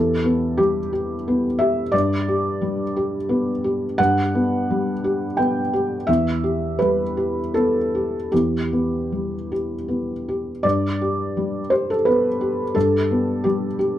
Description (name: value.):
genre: neoclassical minimalist piano.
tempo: 75-92 BPM.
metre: 3/4.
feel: rubato.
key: unclear.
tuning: A4 = 440 Hz.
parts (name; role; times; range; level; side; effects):
felt-muted upright piano; solo; 0.0-14.0 s; E2 to G5; -19 LUFS; equal; none.
room: moderate studio reverb, RT60 0.5 s.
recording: dark, warm production.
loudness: -19 LUFS.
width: side -12 dB against mid.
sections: 0.0-10.6 A section; 10.6-14.0 A section.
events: none.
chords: 0.0 Em; 1.9 G; 6.1 Em; 10.6 G.